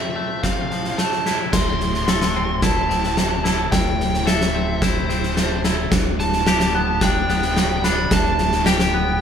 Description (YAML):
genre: post-rock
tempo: 109 BPM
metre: 4/4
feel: straight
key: unclear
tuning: A4 = 440 Hz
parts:
  - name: fuzz lead guitar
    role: melody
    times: 0.0-9.2 s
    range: C5 to C6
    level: -24 LUFS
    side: right 1 dB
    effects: distortion
  - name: twangy electric guitar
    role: arpeggios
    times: 0.0-9.2 s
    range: F2 to A4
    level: -25 LUFS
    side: left 3 dB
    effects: none
  - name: oversized low-tuned drum kit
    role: drums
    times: 0.4-8.9 s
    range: crash cymbal, kick drum, snare drum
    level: -20 LUFS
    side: equal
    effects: none
  - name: growling fingered electric bass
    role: bass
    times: 1.5-9.2 s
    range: D1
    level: -25 LUFS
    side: right 1 dB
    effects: overdrive
room: moderate large studio reverb, RT60 1.2 s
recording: band playing live in one room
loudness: -17 LUFS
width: side -8 dB against mid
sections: 0.0-1.5 A section; 1.5-9.2 B section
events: none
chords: 0.0 Fmaj7; 1.5 Am/D; 5.9 G/D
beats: 0.43 0.98 | 1.53 2.08 2.62 3.17 | 3.72 4.27 4.82 5.37 | 5.91 6.46 7.01 7.56 | 8.11 8.66 9.21